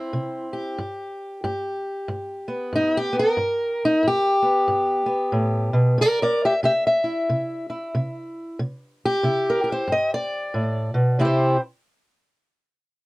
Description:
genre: acoustic country blues, solo or duo.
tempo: 92 BPM.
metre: 4/4.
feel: swing 60% on 8ths.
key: C major.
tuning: A4 = 442 Hz.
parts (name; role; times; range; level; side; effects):
fingerpicked steel-string acoustic guitar; solo; 0.0-11.6 s; G2 to E5; -20 LUFS; equal; none.
room: light reverb.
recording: cassette tape.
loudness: -20 LUFS.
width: side -20 dB against mid.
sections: 0.0-11.2 A section; 11.2-13.1 B section.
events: none.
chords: 0.0 C; 0.8 G; 6.0 C; 9.9 G; 11.2 C.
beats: 0.14 | 0.79 1.44 2.09 2.74 | 3.39 4.04 4.70 5.35 | 6.00 6.65 7.30 7.95 | 8.60 9.26 9.91 10.56 | 11.21.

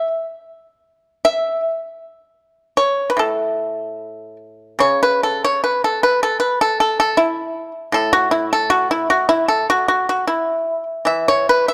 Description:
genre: chinese traditional, Chinese solo plucked strings.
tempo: 72-81 BPM.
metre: 2/4.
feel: rubato.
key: A gong mode.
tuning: A4 = 439 Hz.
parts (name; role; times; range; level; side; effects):
pipa; solo; 0.0-11.7 s; A2 to E5; -18 LUFS; equal; none.
room: moderate recital hall reverb, RT60 1.5 s.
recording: dark, warm production.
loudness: -18 LUFS.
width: mono.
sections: 0.0-4.8 A section; 4.8-11.7 B section.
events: none.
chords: none.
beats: | 0.11 0.87 | 1.63 2.40 | 3.19 3.99 | 4.81 5.63 | 6.42 7.19 | 7.95 8.70 | 9.47 10.27 | 11.07.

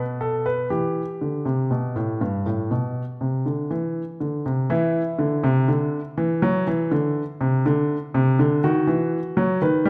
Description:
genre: classical, baroque-style two-part invention for grand piano.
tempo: 61 BPM.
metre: 4/4.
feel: straight.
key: unclear.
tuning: A4 = 442 Hz.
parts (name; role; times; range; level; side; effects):
warm grand piano; solo; 0.0-9.9 s; G2 to B4; -23 LUFS; equal; none.
room: wet recital hall reverb, RT60 1.4 s.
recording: none.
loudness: -23 LUFS.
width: mono.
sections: 0.0-4.7 A section; 4.7-9.9 B section.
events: none.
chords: 0.0 Asus2/B; 0.7 Em; 4.7 Cadd9; 8.6 B/D#.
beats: | 0.70 1.71 2.71 3.70 | 4.70 5.68 6.66 7.65 | 8.63 9.60.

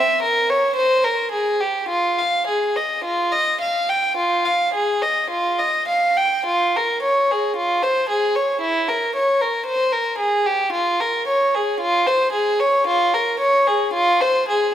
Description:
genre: classical, baroque-style suite movement for unaccompanied violin.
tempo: 51-57 BPM.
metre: 4/4.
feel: rubato.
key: F minor.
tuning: A4 = 440 Hz.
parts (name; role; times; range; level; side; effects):
rich violin; solo; 0.0-14.7 s; E4 to G5; -17 LUFS; equal; none.
room: moderate scoring stage reverb, RT60 1.9 s.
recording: minimal, uncompressed stereo recording.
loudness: -17 LUFS.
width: side -10 dB against mid.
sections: 0.0-6.4 A section; 6.4-14.7 B section.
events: none.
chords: none.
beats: 0.77 | 1.89 3.04 4.17 5.29 | 6.44 7.55 8.61 9.66 | 10.71 11.79 12.86 13.93.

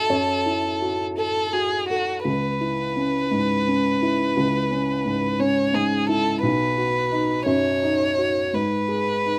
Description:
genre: neoclassical piano and strings.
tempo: 57 BPM (dotted quarters).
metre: 6/8.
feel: rubato.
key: C# minor.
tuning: A4 = 440 Hz.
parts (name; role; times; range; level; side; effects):
rich violin; melody; 0.0-9.4 s; F#4 to C#5; -26 LUFS; equal; none.
dark upright piano; accompaniment; 0.0-9.4 s; B1 to E5; -25 LUFS; equal; none.
room: little or no reverb.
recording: recorded outdoors, with no room sound.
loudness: -22 LUFS.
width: mono.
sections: 0.0-2.3 A section; 2.3-9.4 B section.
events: none.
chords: 0.0 F#m7; 2.3 C#m7; 6.4 B; 8.5 G#m.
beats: | 0.10 1.18 | 2.26 3.32 | 4.36 5.40 | 6.43 7.47 | 8.54.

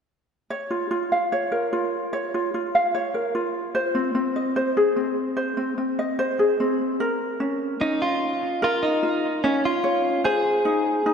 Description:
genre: pop.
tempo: 74 BPM.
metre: 4/4.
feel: straight.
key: Bb minor.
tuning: A4 = 440 Hz.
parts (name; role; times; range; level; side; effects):
ukulele; accompaniment; 0.5-11.1 s; C4 to F5; -22 LUFS; equal; none.
direct-recorded clean electric guitar; melody; 7.8-11.1 s; Db4 to Ab4; -22 LUFS; equal; lush chorus, analog delay.
room: wet lush hall reverb, RT60 3.0 s.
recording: dreamy mix soaked in reverb.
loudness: -21 LUFS.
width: side -6 dB against mid.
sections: 0.5-7.0 A section; 7.0-11.1 B section.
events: none.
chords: 0.5 Bbm; 3.8 Ab; 7.0 Bbm; 10.2 Ab.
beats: | 0.51 1.32 2.13 2.95 | 3.76 4.57 5.38 6.19 | 7.00 7.82 8.62 9.44 | 10.24 11.05.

